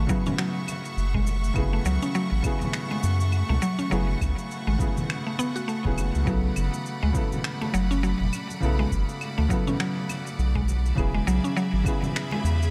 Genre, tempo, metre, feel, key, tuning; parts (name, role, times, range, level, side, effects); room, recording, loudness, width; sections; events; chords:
organic downtempo; 102 BPM; 4/4; swing 58% on 16ths; F# minor; A4 = 440 Hz
felt-muted upright piano; accompaniment; 0.0-12.7 s; C#3 to A4; -34 LUFS; equal; sidechain pumping, digital delay
bright studio string section; sustained chords; 0.0-12.7 s; A3 to C#6; -37 LUFS; equal; sidechain pumping
mallet-like synth pluck; arpeggios; 0.0-12.4 s; F#3 to F#4; -32 LUFS; equal; chorus, digital delay
round analog bass; bass; 0.0-12.7 s; E1 to F#2; -27 LUFS; equal; tube saturation
electronic kick drum; drums; 0.1-12.0 s; -31 LUFS; equal
electronic shaker, finger snaps and claves; drums; 0.1-12.7 s; -38 LUFS; equal
congas; percussion; 0.3-12.7 s; -38 LUFS; equal
light reverb, small room ambience; -26 LUFS; mono
0.0-12.7 A section
0.0 F#m7; 6.3 Bm7; 11.0 E7